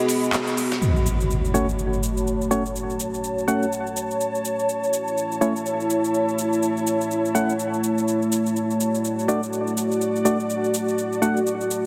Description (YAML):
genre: bass house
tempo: 124 BPM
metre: 4/4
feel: swing 59% on 16ths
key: F# minor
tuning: A4 = 445 Hz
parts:
  - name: dark analog pad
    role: sustained chords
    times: 0.0-11.9 s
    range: A3 to D#5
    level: -28 LUFS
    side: equal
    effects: chorus
  - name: big-room dance drum kit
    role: drums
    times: 0.0-11.8 s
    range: handclaps, hi-hat, shaker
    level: -32 LUFS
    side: equal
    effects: none
  - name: ethereal airy pad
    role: texture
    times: 0.0-11.9 s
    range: E4 to B5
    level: -28 LUFS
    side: equal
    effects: ensemble chorus, built-in reverb
  - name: damped 70s drum kit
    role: drums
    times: 0.1-0.8 s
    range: ride cymbal, snare drum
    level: -39 LUFS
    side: equal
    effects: high-pass filter on cymbals, high-pass filter on hats, high-pass filter on snare, high-pass filter on room
  - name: impact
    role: sound effects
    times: 0.8-2.8 s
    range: none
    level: -27 LUFS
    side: equal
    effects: none
  - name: percussive organ stab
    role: stabs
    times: 1.5-11.4 s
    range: A3 to F#5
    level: -27 LUFS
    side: equal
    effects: chorus, cassette tape, digital delay
room: moderate lush hall reverb, RT60 1.8 s, small room ambience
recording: heavily compressed radio sound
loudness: -23 LUFS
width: mono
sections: 0.8-11.9 A section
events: band accent 0.3; impact 0.8-2.8; filter sweep on analog synth pad 0.8-11.9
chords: 0.0 B; 0.8 F#m; 4.7 A; 8.6 D